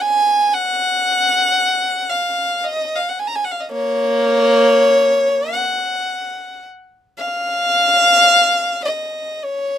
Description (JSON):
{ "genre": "classical, free, expressive piece for unaccompanied violin", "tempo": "43-58 BPM", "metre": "3/4", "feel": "rubato", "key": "F# major", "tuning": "A4 = 440 Hz", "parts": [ { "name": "warm violin", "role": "solo", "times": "0.0-9.8 s", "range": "A#3 to A#5", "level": "-14 LUFS", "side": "equal", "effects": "none" } ], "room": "little or no reverb", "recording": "close, detailed microphones", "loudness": "-14 LUFS", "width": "side -10 dB against mid", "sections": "0.0-9.8 A section", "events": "none", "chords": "none" }